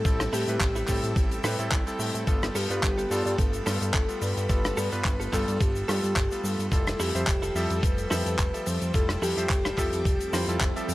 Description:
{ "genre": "nu-disco, nu disco", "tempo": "108 BPM", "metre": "4/4", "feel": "swing 54% on 16ths", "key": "unclear", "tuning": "A4 = 440 Hz", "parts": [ { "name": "soft octave-layered synth lead", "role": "melody", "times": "0.0-10.9 s", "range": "G4 to C5", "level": "-32 LUFS", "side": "left 1 dB", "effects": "chorus, tremolo, tape echo" }, { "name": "clear electric grand piano", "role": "accompaniment", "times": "0.0-10.9 s", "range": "F3 to E5", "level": "-32 LUFS", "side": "right 1 dB", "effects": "sidechain pumping, slapback echo" }, { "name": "string machine, full ensemble", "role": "sustained chords", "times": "0.0-10.9 s", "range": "A4 to E6", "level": "-40 LUFS", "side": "left 1 dB", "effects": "none" }, { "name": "fat analog bass", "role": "bass", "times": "0.0-10.9 s", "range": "F1 to A2", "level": "-30 LUFS", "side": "equal", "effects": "sidechain pumping" }, { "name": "damped 70s drum kit", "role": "drums", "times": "0.1-10.9 s", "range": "handclaps, hi-hat, rim click, shaker", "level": "-31 LUFS", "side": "left 1 dB", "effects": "none" }, { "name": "electronic kick drum", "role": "drums", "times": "0.1-10.7 s", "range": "none", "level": "-26 LUFS", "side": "equal", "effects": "none" }, { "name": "direct-recorded clean electric guitar", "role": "riff", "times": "0.3-10.9 s", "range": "B3 to A4", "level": "-35 LUFS", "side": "right 3 dB", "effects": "wide subtle chorus" }, { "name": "swell", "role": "sound effects", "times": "10.2-10.9 s", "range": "none", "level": "-38 LUFS", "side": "right 3 dB", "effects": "none" } ], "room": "small room ambience", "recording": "none", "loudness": "-24 LUFS", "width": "side -17 dB against mid", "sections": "0.0-10.9 A section", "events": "swell 10.2-10.9", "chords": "0.0 Am7; 2.3 G9; 6.7 Fmaj9", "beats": "| 0.06 0.61 1.17 1.72 | 2.28 2.83 3.39 3.94 | 4.50 5.06 5.61 6.17 | 6.72 7.28 7.83 8.39 | 8.95 9.50 10.06 10.61" }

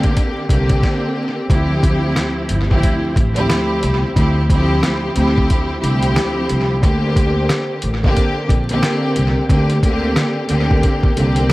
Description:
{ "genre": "hip hop, boom-bap hip-hop", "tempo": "90 BPM", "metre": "4/4", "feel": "swing 62% on 16ths", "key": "D minor", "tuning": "A4 = 441 Hz", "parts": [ { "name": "warm studio string section", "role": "accompaniment", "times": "0.0-11.5 s", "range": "D2 to G4", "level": "-18 LUFS", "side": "equal", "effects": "tape echo" }, { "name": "upright bass", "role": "bass", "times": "0.0-11.5 s", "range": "G1 to D2", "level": "-18 LUFS", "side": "equal", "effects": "none" }, { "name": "dusty soul sampler-style drum kit", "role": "drums", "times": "0.0-11.5 s", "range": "hi-hat, kick drum, rim click, snare drum", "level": "-18 LUFS", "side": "equal", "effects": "tape echo" } ], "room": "light reverb, studio reverb", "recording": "echo-heavy mix, vinyl crackle", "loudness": "-14 LUFS", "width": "side -19 dB against mid", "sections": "0.0-1.5 A section; 1.5-11.5 B section", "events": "stop 0.8-1.5", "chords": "0.0 Bb69; 1.5 Dm11; 6.8 Bb69", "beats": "0.16 0.83 | 1.50 2.16 2.83 3.50 | 4.16 4.83 5.50 6.16 | 6.83 7.50 8.16 8.83 | 9.50 10.16 10.83 11.50" }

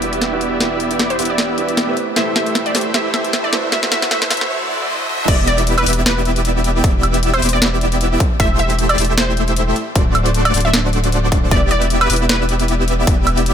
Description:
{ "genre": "future bass", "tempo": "154 BPM", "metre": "4/4", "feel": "swing 55% on 16ths, half-time", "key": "E minor", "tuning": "A4 = 439 Hz", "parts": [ { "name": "felt-muted upright piano", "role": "accompaniment", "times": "0.0-4.5 s", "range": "G3 to F#5", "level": "-27 LUFS", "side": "right 6 dB", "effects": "sidechain pumping, ping-pong delay" }, { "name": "dense compressed supersaw", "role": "riff", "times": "0.0-13.5 s", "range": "A3 to E5", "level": "-19 LUFS", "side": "equal", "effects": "sidechain pumping, low-pass filter, ping-pong delay" }, { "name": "saturated sub bass", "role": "bass", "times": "0.0-13.5 s", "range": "D1 to E1", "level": "-20 LUFS", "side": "equal", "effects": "sidechain pumping" }, { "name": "trap drum kit", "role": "drums", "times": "0.0-13.5 s", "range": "crash cymbal, hi-hat, snare drum, woodblock", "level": "-19 LUFS", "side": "equal", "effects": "none" }, { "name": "riser and swell", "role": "sound effects", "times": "1.6-5.3 s", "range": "none", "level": "-30 LUFS", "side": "equal", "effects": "none" }, { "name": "wide unison pluck", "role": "melody", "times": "1.1-12.5 s", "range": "B4 to E5", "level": "-23 LUFS", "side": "equal", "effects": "sidechain pumping, digital delay" }, { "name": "electronic kick drum", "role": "drums", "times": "5.3-13.2 s", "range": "none", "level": "-15 LUFS", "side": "equal", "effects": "none" } ], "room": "light reverb", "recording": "high-pass filter", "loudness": "-14 LUFS", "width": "side -8 dB against mid", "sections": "0.0-5.3 A section; 5.3-13.5 B section", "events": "build-up 0.0-5.3; drum fill 0.0-4.5; filter sweep on supersaw synth 0.0-5.3; filter sweep on synth pluck 0.0-5.3; filter sweep 0.0-5.3; break 4.5-5.3; swell 4.5-5.3; drop 5.3-13.5", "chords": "0.0 Em7; 2.0 Am7/E; 3.5 D7; 5.3 Em7; 8.2 Am7/E; 9.8 D7; 11.5 Em7", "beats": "0.22 | 0.60 0.99 1.39 1.77 | 2.16 2.55 2.94 3.33 | 3.72 4.11 4.50 4.89 | 5.28 5.67 6.06 6.45 | 6.84 7.23 7.62 8.01 | 8.40 8.79 9.18 9.57 | 9.96 10.35 10.73 11.12 | 11.52 11.90 12.29 12.68 | 13.07 13.46" }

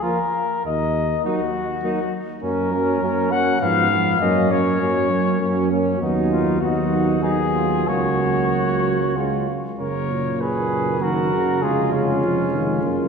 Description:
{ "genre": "classical, brass quintet", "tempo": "100 BPM", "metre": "3/4", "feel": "rubato", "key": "F# major", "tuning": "A4 = 440 Hz", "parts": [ { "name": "mellow trumpet", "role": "melody", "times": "0.0-13.1 s", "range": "E#4 to F#5", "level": "-23 LUFS", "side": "left 5 dB", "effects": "none" }, { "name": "warm flugelhorn", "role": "second line", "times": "0.0-13.1 s", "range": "Cb4 to A#4", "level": "-25 LUFS", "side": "right 4 dB", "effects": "none" }, { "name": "dark euphonium", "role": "accompaniment", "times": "0.0-13.1 s", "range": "A#2 to G#3", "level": "-25 LUFS", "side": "right 2 dB", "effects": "none" }, { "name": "mellow French horn", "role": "accompaniment", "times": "0.0-13.1 s", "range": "F#3 to C#4", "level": "-27 LUFS", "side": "left 3 dB", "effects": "none" }, { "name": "mellow tuba", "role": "bass", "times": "0.7-13.1 s", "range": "E#1 to Ab2", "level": "-25 LUFS", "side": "right 3 dB", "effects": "none" } ], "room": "wet church reverb, RT60 3.1 s", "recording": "recorded in a church or concert hall", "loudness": "-18 LUFS", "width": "side -6 dB against mid", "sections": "0.0-9.8 A section; 9.8-13.1 B section", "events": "none", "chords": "0.0 Bb5; 0.6 Ebm; 2.4 F#; 3.6 Fdim/Ab; 4.2 F#; 6.0 B/D#; 7.9 F#/C#; 9.2 C#; 9.8 F#; 11.6 C#/E#", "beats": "0.02 | 0.65 1.24 1.84 | 2.43 3.02 3.62 | 4.21 4.82 5.41 | 6.01 6.62 7.23 | 7.89 8.52 9.16 | 9.79 10.41 11.02 | 11.63 12.22 12.82" }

